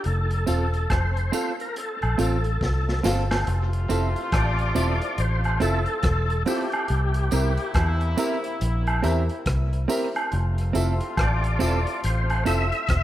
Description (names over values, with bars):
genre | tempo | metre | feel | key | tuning
roots reggae | 70 BPM | 4/4 | swing 61% on 16ths | unclear | A4 = 440 Hz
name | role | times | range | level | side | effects
overdriven tonewheel organ | melody | 0.0-13.0 s | G4 to E5 | -29 LUFS | left 2 dB | chorus vibrato, fast rotary speaker, tape echo
crunchy breakbeat drum kit | drums | 0.0-13.0 s | hi-hat, kick drum, rim click, snare drum | -29 LUFS | equal | tape echo
vintage muted fingered electric bass | bass | 0.1-13.0 s | E1 to E2 | -23 LUFS | equal | none
clean electric guitar | accompaniment | 0.5-12.7 s | C4 to Bb4 | -30 LUFS | right 6 dB | tube saturation, spring reverb, tape echo
warm upright piano | stabs | 0.5-12.7 s | F4 to F5 | -32 LUFS | left 3 dB | none
tambourine and woodblock | percussion | 0.5-12.7 s | none | -31 LUFS | right 2 dB | none
clear horn section | second line | 3.5-13.0 s | C3 to F4 | -33 LUFS | left 2 dB | tape echo
room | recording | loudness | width
light reverb, studio ambience | rough home demo mix | -21 LUFS | side -13 dB against mid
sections
0.0-3.5 A section; 3.5-13.0 B section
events
drum fill 2.6-3.5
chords
0.0 F; 3.5 Fmaj7; 6.9 C7; 10.3 Fmaj7